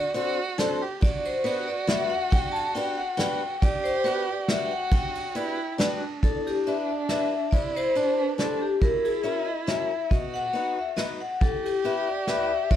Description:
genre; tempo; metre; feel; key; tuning
musette waltz; 139 BPM; 3/4; swing 53% on 8ths; G major, E minor from 6.2 s; A4 = 440 Hz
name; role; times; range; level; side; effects
vibraphone with hard mallets; melody; 0.0-12.8 s; G4 to A5; -27 LUFS; left 3 dB; plate reverb
warm violin; second line; 0.0-12.8 s; D4 to A4; -32 LUFS; right 4 dB; none
picked swing-style acoustic guitar; accompaniment; 0.0-12.8 s; E2 to C5; -32 LUFS; left 2 dB; none
soft brush drum kit; drums; 0.2-12.8 s; kick drum, ride cymbal, snare drum; -27 LUFS; equal; none
room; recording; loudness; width
moderate small room reverb, RT60 0.5 s; dark, warm production; -23 LUFS; side -11 dB against mid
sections
0.0-6.2 A section; 6.2-12.8 B section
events
none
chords
0.0 D7; 1.0 Gmaj7; 6.2 Em7; 7.5 Cadd9; 8.8 F#7; 10.1 B; 11.4 Em

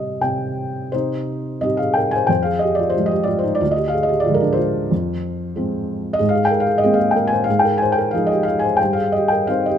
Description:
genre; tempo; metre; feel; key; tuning
classical, lyrical solo piano; 91 BPM; 4/4; rubato; C minor; A4 = 440 Hz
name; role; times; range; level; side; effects
felt-muted upright piano; solo; 0.0-9.8 s; D2 to Ab5; -16 LUFS; equal; none
room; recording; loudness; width
moderate recital hall reverb, RT60 1.8 s; close, detailed microphones; -16 LUFS; side -9 dB against mid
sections
0.9-9.8 A section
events
felt piano fill 0.0-0.9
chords
0.0 Cm; 2.3 Fmadd9; 3.6 Ddim; 4.9 Fm; 6.2 Abadd9; 8.8 Cm/G

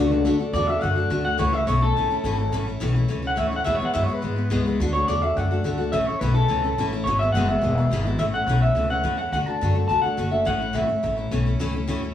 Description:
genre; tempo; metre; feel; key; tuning
rockabilly; 212 BPM; 4/4; straight; A major; A4 = 438 Hz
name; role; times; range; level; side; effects
electric guitar through a small old amp; melody; 0.0-11.1 s; D4 to A5; -24 LUFS; left 1 dB; spring reverb
picked steel-string acoustic guitar; accompaniment; 0.0-12.1 s; E2 to F#4; -26 LUFS; left 3 dB; none
upright bass; bass; 0.0-12.1 s; E1 to G#2; -24 LUFS; equal; none
room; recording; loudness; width
light reverb; band playing live in one room, studio reverb; -20 LUFS; side -10 dB against mid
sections
0.0-8.2 A section; 8.2-12.1 B section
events
clean electric guitar solo 0.0-8.2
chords
0.0 D; 1.4 A; 3.7 E; 4.8 D; 5.9 A; 7.1 E; 8.2 A; 9.3 D; 10.5 A

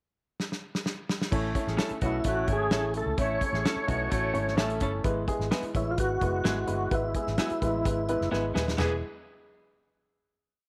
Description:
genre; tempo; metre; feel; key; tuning
uptempo 1960s-style soul; 128 BPM; 4/4; straight; E major; A4 = 441 Hz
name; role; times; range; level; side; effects
natural country drum kit; drums; 0.4-8.9 s; crash cymbal, hi-hat, kick drum, snare drum, splash cymbal, toms; -33 LUFS; equal; none
dark saxophone section; second line; 1.3-4.9, 8.8-9.0 s; E3 to A4; -38 LUFS; equal; none
dark upright piano; accompaniment; 1.3-9.0 s; G#3 to E5; -34 LUFS; equal; none
fingered electric bass; bass; 1.3-9.0 s; D#1 to C#2; -35 LUFS; equal; none
semi-hollow electric guitar; stabs; 1.8-8.9 s; B3 to A4; -39 LUFS; equal; none
tonewheel organ; melody; 2.1-8.3 s; E4 to C#5; -33 LUFS; equal; overdrive, chorus vibrato, slow rotary speaker, slapback echo
room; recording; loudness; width
light reverb, studio reverb; none; -28 LUFS; mono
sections
0.0-1.3 pickup bar; 1.3-8.8 verse; 8.8-10.7 final chord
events
drum fill 0.4-1.3, 8.3-8.8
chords
0.0 N.C.; 1.3 A; 5.0 E

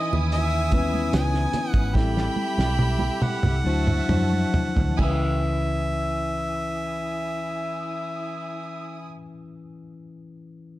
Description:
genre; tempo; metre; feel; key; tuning
lush 1970s-style soul; 65-75 BPM; 4/4; straight; C# minor; A4 = 440 Hz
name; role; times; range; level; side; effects
clear harmonica; melody; 0.0-9.1 s; D#5 to G#5; -29 LUFS; equal; none
warm symphonic violin section; second line; 0.0-9.1 s; E4 to D#6; -33 LUFS; right 2 dB; none
mellow tine electric piano; accompaniment; 0.0-10.8 s; E3 to C5; -30 LUFS; left 3 dB; none
vintage muted fingered electric bass; bass; 0.1-9.1 s; G#1 to F#2; -25 LUFS; right 1 dB; none
congas; percussion; 0.1-5.9 s; none; -32 LUFS; right 4 dB; none
cloth-damped thuddy drum kit; drums; 0.3-5.2 s; crash cymbal, hi-hat, kick drum, snare drum, toms; -25 LUFS; right 1 dB; none
room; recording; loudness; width
studio ambience; dark, warm production; -22 LUFS; side -16 dB against mid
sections
0.0-5.4 A section; 5.4-9.2 B section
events
slowing down 0.0-5.4; drum fill 1.9-5.4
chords
0.0 C#m9; 1.9 Am7; 3.6 D9; 5.0 C#m9

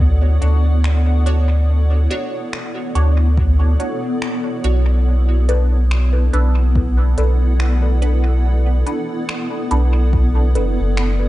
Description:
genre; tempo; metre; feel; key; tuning
ambient dub; 71 BPM; 4/4; swing 59% on 16ths; B minor; A4 = 442 Hz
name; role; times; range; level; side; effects
granular cloud pad; sustained chords; 0.0-11.3 s; B3 to F#5; -24 LUFS; equal; built-in reverb
soft dub sub bass; bass; 0.0-11.3 s; F#1 to D2; -14 LUFS; equal; tube saturation
electronic kick drum; drums; 0.0-10.3 s; none; -19 LUFS; equal; none
filtered dub chord stab; stabs; 0.4-10.9 s; D4 to C#5; -26 LUFS; right 1 dB; phaser, wide subtle chorus, dub echo
organic electronic drum kit; drums; 0.4-11.2 s; finger snaps, hi-hat; -30 LUFS; equal; dub echo
room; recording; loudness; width
digital ambience; nothing above 11.0 kHz; -14 LUFS; side -16 dB against mid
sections
0.0-11.3 A section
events
none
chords
0.0 Dmaj7; 5.1 Bm7

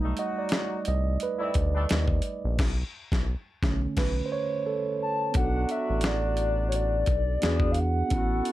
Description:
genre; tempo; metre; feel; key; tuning
R&B, neo-soul; 87 BPM; 4/4; swing 54% on 16ths; B dorian; A4 = 440 Hz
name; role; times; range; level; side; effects
mellow tine electric piano; accompaniment; 0.0-8.5 s; D3 to D#5; -30 LUFS; right 4 dB; none
warm horn section; stabs; 0.0-8.5 s; F#3 to A4; -35 LUFS; left 3 dB; none
round analog bass; bass; 0.0-8.4 s; A1 to E2; -27 LUFS; equal; none
dusty soul sampler-style drum kit; drums; 0.2-8.5 s; crash cymbal, hi-hat, kick drum, snare drum; -28 LUFS; equal; none
hollow clarinet-like synth lead; melody; 5.0-8.5 s; C#5 to A5; -29 LUFS; left 2 dB; chorus, phaser
room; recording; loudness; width
light reverb; none; -24 LUFS; side -15 dB against mid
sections
0.0-5.4 A section; 5.4-8.5 B section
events
tine electric piano solo 0.0-5.4; band accent 2.6-5.4; silent gap 4.7-5.4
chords
0.0 B7alt; 2.6 Bm7; 7.4 E9

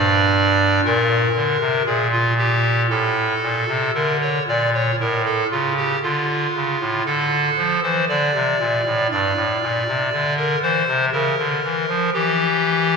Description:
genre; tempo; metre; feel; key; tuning
classical, chorale-style piece for pipe organ; 59 BPM; 4/4; straight; D minor; A4 = 440 Hz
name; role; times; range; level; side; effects
pipe organ, clarinet reed; solo; 0.0-13.0 s; G2 to D5; -17 LUFS; equal; none
room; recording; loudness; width
wet church reverb, RT60 2.6 s; minimal, uncompressed stereo recording; -17 LUFS; side -5 dB against mid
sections
0.0-13.0 A section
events
none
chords
0.0 G5; 0.8 N.C.; 2.9 D5/A; 5.0 A; 7.1 D5; 9.1 E7(b5, no3) (rootless); 11.1 C#dim7 (rootless)

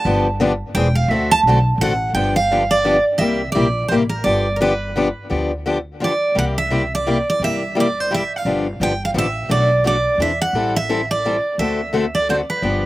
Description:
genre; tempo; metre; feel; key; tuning
acoustic string swing (jazz manouche); 172 BPM; 3/4; swing 60% on 8ths; G major; A4 = 441 Hz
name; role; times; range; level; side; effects
picked steel-string acoustic guitar; melody; 0.0-12.8 s; Bb4 to A5; -18 LUFS; right 2 dB; slapback echo
picked steel-string acoustic guitar; accompaniment; 0.0-12.8 s; B2 to A4; -20 LUFS; left 2 dB; slapback echo
upright bass; bass; 0.1-12.9 s; E1 to E2; -23 LUFS; equal; none
room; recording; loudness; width
little or no reverb; recorded outdoors, with no room sound; -16 LUFS; side -17 dB against mid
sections
0.0-2.2 A section; 2.2-12.9 B section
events
steel-string acoustic guitar solo 0.0-2.2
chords
0.1 G7; 0.8 E7alt; 1.1 D7; 2.2 G7; 3.2 C7; 4.3 G7; 6.4 C7; 8.4 G7; 9.5 Bm7; 10.2 Eaug7; 10.5 Am7; 11.6 D7

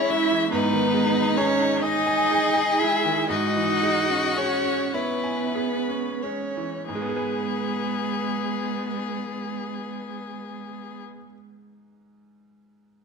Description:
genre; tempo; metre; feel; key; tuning
classical, slow romantic movement for piano quartet; 28-48 BPM (dotted quarters); 6/8; rubato; G# minor; A4 = 440 Hz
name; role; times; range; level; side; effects
warm violin; melody; 0.0-11.0 s; G#4 to E5; -27 LUFS; left 8 dB; none
warm cello; second line; 0.0-11.0 s; G#3 to E4; -27 LUFS; right 8 dB; none
warm violin; second line; 0.0-11.0 s; B3 to G#4; -28 LUFS; left 3 dB; none
bright baby grand piano; accompaniment; 0.0-13.0 s; G#2 to G#5; -29 LUFS; right 1 dB; none
room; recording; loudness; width
moderate scoring stage reverb, RT60 1.7 s; close, detailed microphones; -22 LUFS; side -5 dB against mid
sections
0.0-6.9 A section; 6.9-10.4 B section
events
slowing down 0.0-6.9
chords
0.0 C#m/G#; 0.5 G#m; 3.3 C#m/G#; 6.9 G#m

